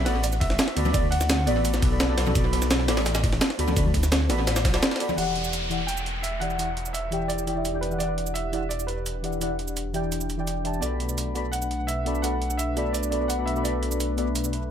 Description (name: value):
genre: liquid drum and bass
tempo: 170 BPM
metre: 4/4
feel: straight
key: E minor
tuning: A4 = 441 Hz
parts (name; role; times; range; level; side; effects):
- warm baby grand piano; melody; 0.0-14.1 s; B4 to G5; -32 LUFS; right 2 dB; tape echo
- deep mellow chord stab; accompaniment; 0.0-14.3 s; E3 to B5; -29 LUFS; left 1 dB; chorus, phaser, tape echo
- dark detuned saw bass; bass; 0.0-14.7 s; E1 to D2; -28 LUFS; equal; none
- breakbeat sampler-style drum kit; drums; 0.1-14.6 s; hi-hat, ride cymbal, shaker, snare drum; -29 LUFS; right 1 dB; tape echo
- jungle sampler-style drum kit; drums; 0.1-5.1 s; ride cymbal, snare drum; -30 LUFS; equal; high-pass filter on cymbals, high-pass filter on snare, high-pass filter on room, tape echo
- electronic kick drum; drums; 0.4-4.7 s; none; -25 LUFS; equal; none
- congas; percussion; 0.9-5.2 s; none; -34 LUFS; left 4 dB; none
- warm analog pad; sustained chords; 5.2-14.7 s; A3 to B4; -34 LUFS; left 3 dB; lush chorus, sidechain pumping
- downlifter; sound effects; 5.2-8.0 s; none; -34 LUFS; equal; none
room: light reverb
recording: echo-heavy mix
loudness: -23 LUFS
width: side -9 dB against mid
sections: 0.0-5.2 A section; 5.2-14.7 B section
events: drop 0.0-5.2; filter sweep on analog synth pad 5.2-14.7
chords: 0.0 Bm7; 5.2 Em9; 10.8 Bm7